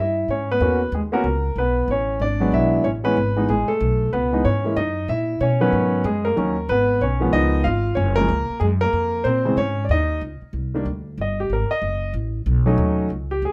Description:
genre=jazz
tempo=187 BPM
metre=4/4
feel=swing 62% on 8ths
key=G# minor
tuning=A4 = 439 Hz
part: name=warm concert grand piano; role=melody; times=0.0-13.5 s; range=C#3 to E#5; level=-22 LUFS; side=equal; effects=none
part: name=upright bass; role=bass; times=0.0-13.5 s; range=F#1 to B2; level=-25 LUFS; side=equal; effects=none
room=light reverb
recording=none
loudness=-21 LUFS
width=mono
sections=0.3-10.5 A section; 10.5-13.5 B section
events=grand piano solo 10.5-13.5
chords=0.3 G#m11; 1.6 Aadd9; 2.2 E7; 2.8 Amaj7sus2; 4.1 C#m7; 4.8 F#7; 5.4 Bmaj7; 6.7 G#m; 8.0 F#maj7; 9.2 A#m7; 9.9 C#sus2; 10.5 Cm9; 11.8 F#m; 12.5 B9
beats=| 0.29 0.61 0.93 1.25 | 1.57 1.89 2.21 2.53 | 2.85 3.17 3.49 3.81 | 4.13 4.45 4.77 5.09 | 5.41 5.73 6.05 6.37 | 6.69 7.01 7.33 7.65 | 7.97 8.29 8.61 8.93 | 9.25 9.57 9.89 10.21 | 10.53 10.85 11.18 11.50 | 11.82 12.14 12.46 12.78 | 13.10 13.42

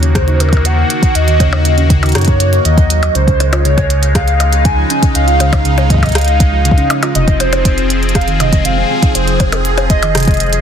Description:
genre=IDM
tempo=120 BPM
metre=4/4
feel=straight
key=unclear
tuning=A4 = 442 Hz
part: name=phased analog pad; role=sustained chords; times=0.0-10.6 s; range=Db3 to Ab4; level=-18 LUFS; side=left 1 dB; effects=phaser, chorus
part: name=harp-like synth pluck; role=arpeggios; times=0.0-10.5 s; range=C3 to Ab4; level=-20 LUFS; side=right 3 dB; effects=chorus, ping-pong delay
part: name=warm sub bass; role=bass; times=0.0-10.6 s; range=F1 to Gb2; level=-14 LUFS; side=equal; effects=none
part: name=glitchy drum kit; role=drums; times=0.0-10.6 s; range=hi-hat, percussion blips, rim click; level=-19 LUFS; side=left 1 dB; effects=none
part: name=electronic kick drum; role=drums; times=0.1-10.4 s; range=none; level=-13 LUFS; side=equal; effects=none
part: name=warbly nostalgic lead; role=melody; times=0.2-10.6 s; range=Bb4 to Ab5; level=-17 LUFS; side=equal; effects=wide subtle chorus, dub echo
room=light reverb, digital ambience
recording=dense, heavily limited modern master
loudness=-9 LUFS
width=side -8 dB against mid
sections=0.0-10.6 A section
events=none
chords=0.0 Ebm7; 3.2 Db; 7.2 Fm7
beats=0.15 0.65 | 1.15 1.65 2.15 2.65 | 3.15 3.65 4.15 4.65 | 5.15 5.65 6.15 6.65 | 7.15 7.65 8.15 8.65 | 9.15 9.65 10.15

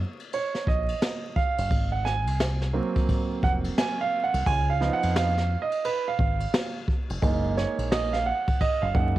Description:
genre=hip hop, jazz-hop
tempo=87 BPM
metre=4/4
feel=swing 62% on 16ths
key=unclear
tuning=A4 = 440 Hz
part: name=deep dub fingered electric bass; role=bass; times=0.0-9.2 s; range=F1 to Gb2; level=-27 LUFS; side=equal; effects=none
part: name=jazz brush drum kit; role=drums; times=0.2-9.2 s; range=hi-hat, kick drum, ride cymbal, snare drum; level=-27 LUFS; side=equal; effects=cassette tape
part: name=clear concert grand piano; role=accompaniment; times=0.3-9.2 s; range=F3 to Ab5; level=-27 LUFS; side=right 5 dB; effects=cassette tape
room=light reverb, small room reverb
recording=home recording on cassette, vinyl crackle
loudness=-23 LUFS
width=side -15 dB against mid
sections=0.0-9.2 A section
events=grand piano solo 0.0-9.2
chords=0.0 Eb7sus2; 1.7 Ab9; 4.5 Db7; 7.2 Gb69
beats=0.33 1.02 | 1.71 2.40 3.09 3.78 | 4.47 5.16 5.84 6.54 | 7.22 7.91 8.60

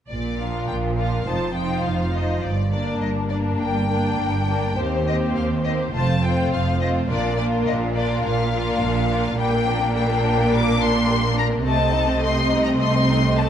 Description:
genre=quick classical-period movement for string orchestra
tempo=104 BPM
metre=4/4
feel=straight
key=Bb major, G minor from 9.4 s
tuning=A4 = 440 Hz
part: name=rich symphonic violin section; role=melody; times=0.1-13.5 s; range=C5 to D6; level=-26 LUFS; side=left 5 dB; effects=none
part: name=rich symphonic cello section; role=bass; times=0.1-13.5 s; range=Eb2 to C3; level=-26 LUFS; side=right 2 dB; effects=none
part: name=warm symphonic double bass section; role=bass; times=0.1-13.5 s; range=F1 to Eb2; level=-25 LUFS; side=right 3 dB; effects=none
part: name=warm symphonic violin section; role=second line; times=0.4-13.5 s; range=G3 to Eb5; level=-25 LUFS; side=left 2 dB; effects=none
part: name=clear symphonic viola section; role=accompaniment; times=0.4-13.5 s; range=F3 to Eb4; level=-26 LUFS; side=right 1 dB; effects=none
room=moderate recital hall reverb, RT60 1.6 s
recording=dark, warm production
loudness=-19 LUFS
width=side -9 dB against mid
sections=0.1-13.5 A section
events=none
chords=0.1 Bb; 1.3 F5; 2.4 Gm; 4.8 Cm7/Eb; 5.9 F; 7.1 Bb; 11.7 Adim/C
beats=| 0.10 0.69 1.27 1.85 | 2.43 3.01 3.61 4.20 | 4.78 5.36 5.94 6.51 | 7.09 7.66 8.24 8.81 | 9.38 9.95 10.52 11.08 | 11.65 12.23 12.81 13.39

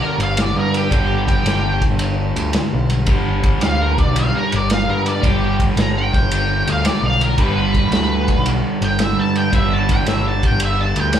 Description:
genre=blues rock power trio and southern rock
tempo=112 BPM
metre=4/4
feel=swing 68% on 8ths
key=G mixolydian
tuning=A4 = 440 Hz
part: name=octave-fuzz lead guitar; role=melody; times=0.0-11.2 s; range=G4 to Bb5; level=-21 LUFS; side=right 1 dB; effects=wah, distortion
part: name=raw garage guitar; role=riff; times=0.0-11.2 s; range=G2 to G3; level=-21 LUFS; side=equal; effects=overdrive, spring reverb, slapback echo
part: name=growling picked electric bass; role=bass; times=0.2-11.1 s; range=G1 to G2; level=-20 LUFS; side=equal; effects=overdrive
part: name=vintage drum kit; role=drums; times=0.2-11.2 s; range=kick drum, ride cymbal, snare drum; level=-20 LUFS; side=equal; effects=none
room=small room ambience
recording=live gig heard through the venue's PA, club reverb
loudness=-15 LUFS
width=side -9 dB against mid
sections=0.0-11.2 A section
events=lead electric guitar solo 0.0-11.2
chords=0.0 G5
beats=0.38 | 0.92 1.46 2.00 2.54 | 3.08 3.62 4.16 4.70 | 5.24 5.78 6.31 6.85 | 7.39 7.93 8.46 9.00 | 9.54 10.07 10.61 11.15

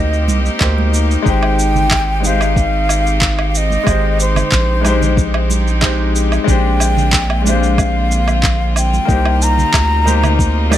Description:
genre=sunset chillout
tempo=92 BPM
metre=4/4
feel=straight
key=Ab lydian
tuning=A4 = 438 Hz
part: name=wooden flute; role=melody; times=0.0-10.7 s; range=C5 to Bb5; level=-20 LUFS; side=left 1 dB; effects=tape echo
part: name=clear concert grand piano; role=accompaniment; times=0.0-10.8 s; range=Ab3 to D5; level=-20 LUFS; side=moving between left 9 dB and right 2 dB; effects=auto-pan, tape echo
part: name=bright chamber string section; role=sustained chords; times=0.0-10.8 s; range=D3 to G4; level=-23 LUFS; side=left 2 dB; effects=none
part: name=round analog bass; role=bass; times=0.0-10.8 s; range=Ab1 to D2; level=-16 LUFS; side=equal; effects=none
part: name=electronic shaker, handclaps and woodblock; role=drums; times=0.1-10.8 s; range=none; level=-20 LUFS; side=right 2 dB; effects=overdrive
part: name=congas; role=percussion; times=0.3-10.8 s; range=none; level=-24 LUFS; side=right 6 dB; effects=none
part: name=electronic kick drum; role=drums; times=0.6-10.5 s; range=none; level=-16 LUFS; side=equal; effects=overdrive
room=light reverb, studio ambience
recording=none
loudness=-12 LUFS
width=side -12 dB against mid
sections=0.0-10.8 A section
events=none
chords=0.0 Cm7; 1.3 Abmaj7; 6.5 Bb13; 9.1 Cm7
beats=0.61 | 1.26 1.91 2.57 3.22 | 3.87 4.52 5.17 5.83 | 6.48 7.13 7.78 8.44 | 9.09 9.74 10.39

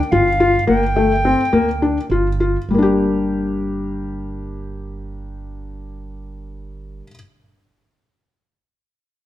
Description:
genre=contemporary instrumental, contemporary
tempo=204 BPM (eighths)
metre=7/8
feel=straight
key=G minor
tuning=A4 = 439 Hz
part: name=bright wooden flute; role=melody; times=0.0-2.1 s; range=F5 to G5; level=-20 LUFS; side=left 1 dB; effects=none
part: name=felt-muted upright piano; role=arpeggios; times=0.1-7.1 s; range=G3 to G4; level=-18 LUFS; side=left 2 dB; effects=none
part: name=upright bass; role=bass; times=0.1-7.0 s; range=G1 to D2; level=-25 LUFS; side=right 2 dB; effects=none
room=moderate recital hall reverb, RT60 1.5 s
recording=close, detailed microphones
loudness=-15 LUFS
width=side -13 dB against mid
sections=0.0-2.7 A section; 2.7-6.9 B section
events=slowing down 0.0-2.7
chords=0.0 G7(no3); 2.7 Gm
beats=0.12 0.40 | 0.68 0.96 1.24 1.52 1.81 2.10 2.40 | 2.69 2.99 3.29 3.59 3.89 4.18 4.48 | 4.77 5.06 5.36 5.65 5.95 6.25 6.55

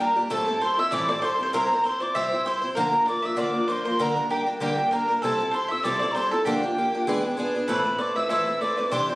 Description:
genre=celtic folk, Celtic reel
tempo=195 BPM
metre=4/4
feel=swing 55% on 8ths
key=unclear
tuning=A4 = 440 Hz
part: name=breathy mellow tin whistle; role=melody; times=0.0-9.2 s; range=G5 to E6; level=-25 LUFS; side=equal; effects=none
part: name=mandolin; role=second line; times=0.0-9.2 s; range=G4 to E5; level=-29 LUFS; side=right 1 dB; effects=none
part: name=picked twelve-string acoustic guitar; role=accompaniment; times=0.0-9.2 s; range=G2 to C5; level=-26 LUFS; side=equal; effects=none
room=moderate studio reverb, RT60 0.6 s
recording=recorded on a phone in the room, studio reverb, compression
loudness=-22 LUFS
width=side -20 dB against mid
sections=0.0-7.7 A section; 7.7-9.2 B section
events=none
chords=0.3 Am7; 1.5 C; 2.8 Bb; 4.0 Gm; 5.2 C6; 6.5 Gm7; 7.1 E7; 7.7 Amadd9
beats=0.00 | 0.31 0.62 0.92 1.23 | 1.54 1.85 2.15 2.46 | 2.77 3.08 3.38 3.69 | 4.00 4.30 4.61 4.92 | 5.22 5.53 5.84 6.15 | 6.45 6.76 7.07 7.38 | 7.68 7.99 8.30 8.61 | 8.91

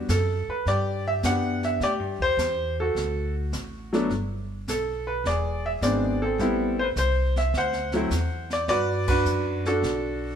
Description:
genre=jazz piano trio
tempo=105 BPM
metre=4/4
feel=swing 69% on 8ths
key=G major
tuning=A4 = 438 Hz
part: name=clear baby grand piano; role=melody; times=0.0-10.4 s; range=F#3 to F#5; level=-24 LUFS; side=equal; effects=none
part: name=upright bass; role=bass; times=0.0-10.4 s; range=E1 to A2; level=-28 LUFS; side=equal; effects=none
part: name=jazz brush drum kit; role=drums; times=0.1-10.4 s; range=brushed snare drum, crash cymbal, hi-hat, kick drum, snare drum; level=-33 LUFS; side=right 2 dB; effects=none
room=moderate stone room reverb, RT60 1.4 s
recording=band playing live in one room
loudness=-23 LUFS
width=side -8 dB against mid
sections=0.0-8.7 A section; 8.7-10.4 B section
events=band accent 9.0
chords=0.0 Em9 (rootless); 1.8 Am7; 3.0 D; 4.1 G; 5.2 E7b13; 6.4 Am7; 7.5 D9; 8.7 Gmaj9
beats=0.09 0.67 1.24 | 1.81 2.38 2.96 3.53 | 4.10 4.68 5.25 5.82 | 6.39 6.97 7.54 8.12 | 8.69 9.26 9.83

